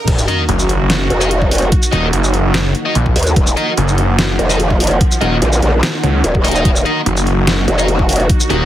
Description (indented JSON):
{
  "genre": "heavy wobble dubstep",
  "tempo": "146 BPM",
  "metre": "4/4",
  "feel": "half-time",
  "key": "Eb minor",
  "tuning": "A4 = 439 Hz",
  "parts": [
    { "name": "swell and sub drop", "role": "sound effects", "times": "0.0-1.7 s", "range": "none", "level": "-24 LUFS", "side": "equal", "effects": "none" },
    { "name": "rich studio string section", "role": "sustained chords", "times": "0.1-8.7 s", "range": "Eb3 to Gb4", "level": "-22 LUFS", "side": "right 1 dB", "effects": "sidechain pumping" },
    { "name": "growl bass", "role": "bass", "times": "0.1-8.3 s", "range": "Eb1 to Eb2", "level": "-14 LUFS", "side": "equal", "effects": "chorus, overdrive" },
    { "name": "dubstep drum kit", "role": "drums", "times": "0.1-8.6 s", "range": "crash cymbal, hi-hat, shaker, snare drum", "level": "-19 LUFS", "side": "equal", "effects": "overdrive" },
    { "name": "electronic kick drum", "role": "drums", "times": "0.1-8.4 s", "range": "none", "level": "-15 LUFS", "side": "equal", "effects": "overdrive" },
    { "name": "granular cloud pad", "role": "texture", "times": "0.3-8.7 s", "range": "Eb4 to Bb5", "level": "-25 LUFS", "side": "right 1 dB", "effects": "built-in reverb, sidechain pumping" },
    { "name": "distorted electric guitar", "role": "stabs", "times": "0.3-8.6 s", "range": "Eb4 to Eb5", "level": "-21 LUFS", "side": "left 2 dB", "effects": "overdrive, tape echo" },
    { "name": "snarling distorted saw bass", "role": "bass", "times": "0.5-8.7 s", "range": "Eb1 to Db2", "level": "-14 LUFS", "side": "equal", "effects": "distortion, overdrive" }
  ],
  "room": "little or no reverb",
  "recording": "heavily compressed radio sound, high-pass filter",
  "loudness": "-11 LUFS",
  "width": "side -12 dB against mid",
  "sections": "0.1-8.7 A section",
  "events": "drop 0.1-8.7; impact 0.1-1.7",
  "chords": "0.1 Ebm"
}